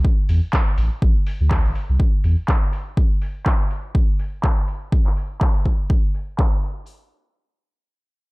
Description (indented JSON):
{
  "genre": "deep house",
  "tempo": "123 BPM",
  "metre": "4/4",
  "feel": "swing 58% on 16ths",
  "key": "unclear",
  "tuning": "A4 = 441 Hz",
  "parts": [
    { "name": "sub bass with octave", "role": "bass", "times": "0.0-2.4 s", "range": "A1 to E2", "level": "-18 LUFS", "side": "equal", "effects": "tube saturation, sidechain pumping" },
    { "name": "electronic kick drum", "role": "drums", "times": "0.0-6.5 s", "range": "none", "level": "-18 LUFS", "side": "equal", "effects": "overdrive" },
    { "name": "deep house drum kit", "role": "drums", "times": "0.3-6.7 s", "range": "handclaps, hi-hat", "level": "-28 LUFS", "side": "equal", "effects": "overdrive, low-pass filter on hats, low-pass filter on perc, low-pass filter on snare" }
  ],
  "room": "little or no reverb",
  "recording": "dark, warm production",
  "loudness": "-17 LUFS",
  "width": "side -24 dB against mid",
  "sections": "0.0-6.9 A section; 6.9-8.3 B section",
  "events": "filter sweep on drum 0.0-6.9",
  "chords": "none"
}